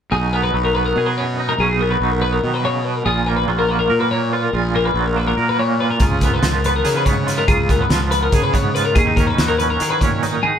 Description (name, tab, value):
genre	math rock and midwest emo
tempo	285 BPM (eighths)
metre	7/8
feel	straight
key	unclear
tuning	A4 = 439 Hz
part	twangy electric guitar	accompaniment	0.1-10.6 s	F#2 to A#4	-22 LUFS	right 6 dB	tremolo
part	twelve-string electric guitar	arpeggios	0.1-10.6 s	G#4 to C#5	-20 LUFS	left 4 dB	none
part	fuzz fingered electric bass	bass	0.1-10.4 s	A#1 to D#3	-21 LUFS	equal	overdrive
part	loose indie drum kit	drums	6.0-10.3 s	hi-hat, kick drum, snare drum	-19 LUFS	equal	none
room	light reverb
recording	band playing live in one room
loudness	-15 LUFS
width	side -8 dB against mid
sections	0.1-10.6 A section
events	none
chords	0.1 B6; 3.1 F#maj7/A#; 6.0 C#7; 9.0 D#m7